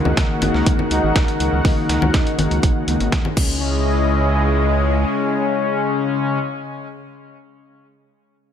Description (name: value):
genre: melodic techno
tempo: 122 BPM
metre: 4/4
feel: straight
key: C# dorian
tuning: A4 = 440 Hz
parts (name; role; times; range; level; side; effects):
- warm analog pad; sustained chords; 0.0-6.4 s; C#3 to F#5; -24 LUFS; equal; chorus, sidechain pumping
- analog synth brass; stabs; 0.0-6.4 s; C#3 to D#4; -21 LUFS; left 3 dB; chorus, sidechain pumping, digital delay
- bowed-like drone; drone; 0.0-6.4 s; C#3 to G#3; -29 LUFS; equal; built-in reverb, sidechain pumping
- gritty driven synth bass; bass; 0.1-5.1 s; G#1 to C#2; -21 LUFS; right 1 dB; sidechain pumping
- electronic congas and crash cymbal; drums; 0.1-3.5 s; none; -24 LUFS; left 3 dB; sidechain pumping on perc, sidechain pumping on cymbals
- dusty soul sampler-style drum kit; drums; 0.2-3.2 s; hi-hat, snare drum; -26 LUFS; equal; high-pass filter on hats, high-pass filter on snare
- electronic kick drum; drums; 0.2-3.5 s; none; -18 LUFS; right 1 dB; none
room: moderate lush hall reverb, RT60 1.9 s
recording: bright 1980s-style digital production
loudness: -16 LUFS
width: side -9 dB against mid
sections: 0.0-3.6 A section; 3.6-7.5 B section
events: none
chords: 0.0 D#m; 3.4 C#madd9